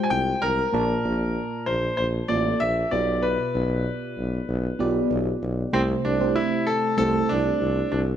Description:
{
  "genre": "1980s-style pop",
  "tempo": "96 BPM",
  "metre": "4/4",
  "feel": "straight",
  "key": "C major",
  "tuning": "A4 = 440 Hz",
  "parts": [
    { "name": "clear concert grand piano", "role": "melody", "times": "0.0-8.0 s", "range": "C4 to Ab5", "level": "-25 LUFS", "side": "equal", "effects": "ping-pong delay" },
    { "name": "mellow FM electric piano", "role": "accompaniment", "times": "0.0-8.2 s", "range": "Bb2 to A5", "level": "-27 LUFS", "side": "right 1 dB", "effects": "chorus, phaser" },
    { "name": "warm tuba", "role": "bass", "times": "0.1-8.1 s", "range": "A1 to C2", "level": "-26 LUFS", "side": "equal", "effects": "none" }
  ],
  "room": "light reverb",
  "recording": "none",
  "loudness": "-21 LUFS",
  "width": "side -10 dB against mid",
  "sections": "0.0-5.7 A section; 5.7-8.2 B section",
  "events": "none",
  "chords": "0.0 Fmadd9/C; 0.7 Bbmaj7; 2.9 G7/B; 5.7 C6"
}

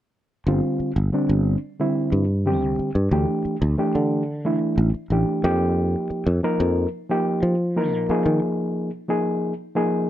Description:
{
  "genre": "electric jazz fusion",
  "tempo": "90 BPM",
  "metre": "4/4",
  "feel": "straight",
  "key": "unclear",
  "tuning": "A4 = 440 Hz",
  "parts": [
    { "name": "overdriven reed electric piano", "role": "accompaniment", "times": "0.5-10.1 s", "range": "D3 to Bb4", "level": "-22 LUFS", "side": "equal", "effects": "none" },
    { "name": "sustaining fretless electric bass", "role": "bass", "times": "0.5-8.4 s", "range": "G1 to F3", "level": "-21 LUFS", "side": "equal", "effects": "none" }
  ],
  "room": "light reverb",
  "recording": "none",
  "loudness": "-20 LUFS",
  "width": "side -12 dB against mid",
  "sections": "0.5-10.1 A section",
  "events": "break 8.4-10.1; reed electric piano fill 9.8-10.1",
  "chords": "0.5 G7sus4; 3.1 Dsus24; 5.4 F9sus4; 8.1 Ebsus24"
}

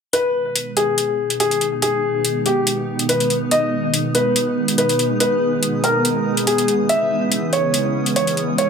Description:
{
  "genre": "heavy wobble dubstep",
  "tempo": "142 BPM",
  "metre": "4/4",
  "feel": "swing 53% on 16ths, half-time",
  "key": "G# minor",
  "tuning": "A4 = 437 Hz",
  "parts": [
    { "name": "dark baby grand piano", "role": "melody", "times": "0.1-8.7 s", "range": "G4 to E5", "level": "-19 LUFS", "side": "left 1 dB", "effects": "ping-pong delay" },
    { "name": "lush unison pad", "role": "sustained chords", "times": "0.1-8.7 s", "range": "B2 to B3", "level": "-22 LUFS", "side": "right 1 dB", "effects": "chorus, vintage 12-bit sampler grit" },
    { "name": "electronic hi-hat", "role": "drums", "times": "0.1-8.7 s", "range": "none", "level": "-21 LUFS", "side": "left 1 dB", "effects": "overdrive" },
    { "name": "granular cloud pad", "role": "texture", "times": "1.1-8.7 s", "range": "E3 to D#6", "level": "-28 LUFS", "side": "right 1 dB", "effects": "built-in reverb" }
  ],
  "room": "moderate digital room reverb, RT60 1.0 s",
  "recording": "none",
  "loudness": "-16 LUFS",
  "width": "side -6 dB against mid",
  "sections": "0.1-8.7 A section",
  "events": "fade-in on ambient pad 0.1-8.7; filter sweep on analog synth pad 0.1-8.7",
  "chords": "0.1 G#m; 6.9 C#madd9"
}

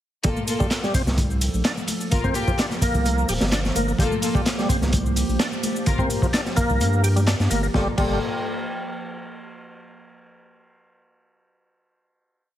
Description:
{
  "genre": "breakbeat, breaks",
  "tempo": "128 BPM",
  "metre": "4/4",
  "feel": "swing 53% on 16ths",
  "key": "G minor",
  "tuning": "A4 = 442 Hz",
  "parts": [
    { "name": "warbly tape-like pad", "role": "sustained chords", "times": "0.6-8.0 s", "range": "F3 to A4", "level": "-31 LUFS", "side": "right 2 dB", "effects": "chorus, built-in reverb, sidechain pumping" },
    { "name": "overdriven tonewheel organ", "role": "riff", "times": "0.2-8.2 s", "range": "F3 to G4", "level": "-27 LUFS", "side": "equal", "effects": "chorus vibrato, slow rotary speaker, tape echo" },
    { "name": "dark chamber string section", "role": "stabs", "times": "0.2-8.2 s", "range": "Bb3 to Bb4", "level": "-29 LUFS", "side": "left 3 dB", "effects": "tape echo" },
    { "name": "saturated sub bass", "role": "bass", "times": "0.2-8.2 s", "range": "D1 to G2", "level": "-22 LUFS", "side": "equal", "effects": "tube saturation" },
    { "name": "crunchy breakbeat drum kit", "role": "drums", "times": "0.2-8.1 s", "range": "crash cymbal, hi-hat, kick drum, snare drum", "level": "-24 LUFS", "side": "equal", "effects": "none" },
    { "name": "house drum kit", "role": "drums", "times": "0.2-7.7 s", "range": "handclaps, ride cymbal, shaker", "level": "-31 LUFS", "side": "equal", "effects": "none" },
    { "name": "congas", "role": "percussion", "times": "0.4-7.6 s", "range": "none", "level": "-33 LUFS", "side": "left 3 dB", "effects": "none" }
  ],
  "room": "light reverb, studio ambience",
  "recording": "heavily compressed radio sound, multiband compression",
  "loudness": "-20 LUFS",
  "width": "side -12 dB against mid",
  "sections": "0.2-7.7 drop; 7.7-9.6 final chord",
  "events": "drop 0.2-7.7",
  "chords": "0.2 Gm9"
}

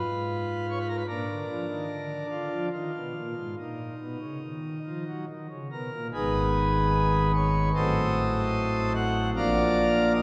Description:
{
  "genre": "classical, chorale-style piece for pipe organ",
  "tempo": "70-77 BPM",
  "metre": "4/4",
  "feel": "rubato",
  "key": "unclear",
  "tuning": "A4 = 440 Hz",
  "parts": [
    { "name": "pipe organ, principal chorus", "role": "solo", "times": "0.0-10.2 s", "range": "Ab1 to F#5", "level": "-28 LUFS", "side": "equal", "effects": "none" }
  ],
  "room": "wet church reverb, RT60 3.3 s",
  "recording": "recorded in a church or concert hall",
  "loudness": "-28 LUFS",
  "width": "mono",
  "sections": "0.0-6.1 A section; 6.1-10.2 B section",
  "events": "none",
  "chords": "0.0 Fdim; 1.1 Bb; 2.7 Ebm; 6.1 Abm; 7.8 Adim7; 9.4 Bb"
}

